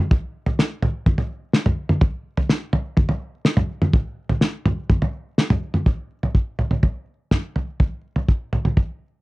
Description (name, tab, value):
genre	folk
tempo	125 BPM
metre	4/4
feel	straight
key	none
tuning	none
part	cloth-damped thuddy drum kit	drums	0.1-8.9 s	kick drum, snare drum, toms	-18 LUFS	equal	none
room	light reverb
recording	dry, close 1970s-style studio recording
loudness	-19 LUFS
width	side -21 dB against mid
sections	0.0-5.9 A section; 5.9-9.2 B section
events	none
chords	none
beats	| 0.11 0.59 1.06 1.54 | 2.02 2.50 2.97 3.45 | 3.93 4.41 4.89 5.38 | 5.86 6.34 6.83 7.31 | 7.80 8.28 8.77